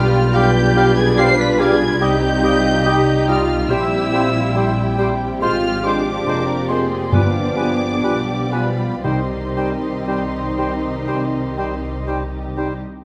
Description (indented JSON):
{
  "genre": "classical",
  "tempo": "56-73 BPM",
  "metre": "4/4",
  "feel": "rubato",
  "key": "C minor",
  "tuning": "A4 = 439 Hz",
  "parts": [
    { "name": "muted symphonic violin section", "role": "melody", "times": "0.0-12.0 s", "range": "B5 to C7", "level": "-28 LUFS", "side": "equal", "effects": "none" },
    { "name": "bright silver concert flute", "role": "second line", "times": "0.0-12.7 s", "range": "G5 to C6", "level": "-31 LUFS", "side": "equal", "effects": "none" },
    { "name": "clear cor anglais", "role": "second line", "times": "0.0-12.7 s", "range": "B4 to F5", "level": "-31 LUFS", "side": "equal", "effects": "none" },
    { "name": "dark clarinet", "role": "second line", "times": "0.0-12.7 s", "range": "Eb4 to G4", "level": "-29 LUFS", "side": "equal", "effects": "none" },
    { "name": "muted symphonic violin section", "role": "second line", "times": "0.0-12.8 s", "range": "E4 to G5", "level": "-31 LUFS", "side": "equal", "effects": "none" },
    { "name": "muted symphonic viola section", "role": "accompaniment", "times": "0.0-12.8 s", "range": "G3 to Ab4", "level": "-27 LUFS", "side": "equal", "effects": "none" },
    { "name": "warm bassoon", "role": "accompaniment", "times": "0.0-12.7 s", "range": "G3 to Ab3", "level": "-28 LUFS", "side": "equal", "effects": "none" },
    { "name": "mellow French horn section", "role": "sustained chords", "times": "0.0-12.7 s", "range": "Eb3 to F4", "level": "-26 LUFS", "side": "equal", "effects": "none" },
    { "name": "muted symphonic cello section", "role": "bass", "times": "0.0-12.0 s", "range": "B3 to C5", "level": "-26 LUFS", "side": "equal", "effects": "none" },
    { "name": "muted symphonic double bass section", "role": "bass", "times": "0.0-12.8 s", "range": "F1 to C2", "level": "-24 LUFS", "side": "equal", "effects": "none" },
    { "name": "timpani", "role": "percussion", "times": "7.1-10.5 s", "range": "G2 to C3", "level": "-24 LUFS", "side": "equal", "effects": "none" }
  ],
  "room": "moderate scoring stage reverb, RT60 1.5 s",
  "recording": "none",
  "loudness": "-18 LUFS",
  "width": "mono",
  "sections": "0.0-13.0 A section",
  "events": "none",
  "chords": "0.0 G7/B; 2.0 Cm; 3.7 C7/Bb; 5.4 Fm/Ab; 7.1 G7b9; 9.0 Cm"
}